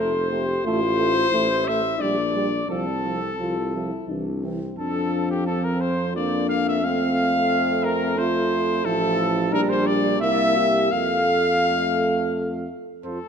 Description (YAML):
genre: classical, brass quintet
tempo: 87 BPM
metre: 3/4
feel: rubato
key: F major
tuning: A4 = 440 Hz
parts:
  - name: clear cornet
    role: melody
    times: 0.0-13.3 s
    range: G4 to F5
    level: -25 LUFS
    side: left 8 dB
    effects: none
  - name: dark trumpet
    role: second line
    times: 0.0-13.2 s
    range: G4 to F5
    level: -27 LUFS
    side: right 8 dB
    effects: none
  - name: mellow French horn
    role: accompaniment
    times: 0.0-13.2 s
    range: C4 to A4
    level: -26 LUFS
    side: left 4 dB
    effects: none
  - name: mellow trombone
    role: accompaniment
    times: 0.0-12.7 s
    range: E3 to Bb3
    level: -28 LUFS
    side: right 4 dB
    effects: none
  - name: clear bass trombone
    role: bass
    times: 0.0-13.2 s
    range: F1 to F2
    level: -28 LUFS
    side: right 2 dB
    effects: none
room: moderate concert hall reverb, RT60 2.0 s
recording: none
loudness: -20 LUFS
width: side -7 dB against mid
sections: 0.0-13.0 A section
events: none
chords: 0.0 F; 0.7 F/A; 2.0 Gm/Bb; 2.7 F/C; 4.1 C; 4.8 F5; 6.2 Bb/F; 6.8 F; 8.9 F/A; 9.5 Gm/Bb; 10.2 C7; 10.9 F